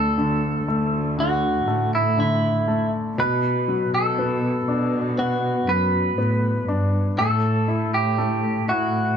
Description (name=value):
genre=pop ballad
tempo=60 BPM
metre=4/4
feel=straight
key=D major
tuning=A4 = 440 Hz
part: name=clean electric guitar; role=melody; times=0.0-9.2 s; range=E4 to B4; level=-23 LUFS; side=right 1 dB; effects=none
part: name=clear concert grand piano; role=accompaniment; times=0.0-9.2 s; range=B2 to E4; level=-25 LUFS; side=left 3 dB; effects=none
part: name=muted studio cello section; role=bass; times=0.0-9.2 s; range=D2 to B2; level=-24 LUFS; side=right 1 dB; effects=none
room=light reverb, small room ambience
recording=dark, warm production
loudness=-19 LUFS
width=side -8 dB against mid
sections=0.0-9.2 A section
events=none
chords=0.0 D5; 3.2 Bm; 7.2 A5